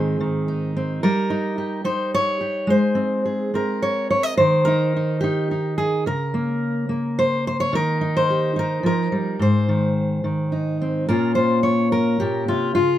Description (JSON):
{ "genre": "folk, solo fingerstyle acoustic guitar", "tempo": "108 BPM", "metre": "3/4", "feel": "straight", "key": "Bb dorian", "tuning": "A4 = 441 Hz", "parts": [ { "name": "fingerpicked steel-string acoustic guitar", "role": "solo", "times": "0.0-13.0 s", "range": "Ab2 to Eb5", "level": "-19 LUFS", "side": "equal", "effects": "none" } ], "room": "moderate studio ambience, RT60 0.5 s", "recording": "minimal, uncompressed stereo recording", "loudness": "-19 LUFS", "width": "side -12 dB against mid", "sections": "0.0-11.1 A section; 11.1-13.0 B section", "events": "none", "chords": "0.0 Ab; 1.0 Eb/G; 2.7 Ab; 4.4 N.C.; 6.1 Bbm/Db; 7.7 Eb; 9.4 Ab; 11.1 Bbm" }